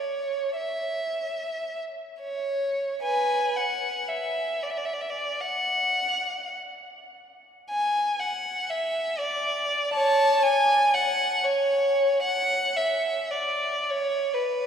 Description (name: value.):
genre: classical, free, expressive piece for unaccompanied violin.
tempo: 60-81 BPM.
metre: 3/4.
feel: rubato.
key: F# minor from 7.7 s.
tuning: A4 = 440 Hz.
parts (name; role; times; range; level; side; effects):
rich violin; solo; 0.0-14.7 s; B4 to A5; -23 LUFS; equal; none.
room: wet cathedral reverb, RT60 4.8 s.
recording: heard from further back in the room.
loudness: -23 LUFS.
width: side -8 dB against mid.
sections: 0.0-14.7 A section.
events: none.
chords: none.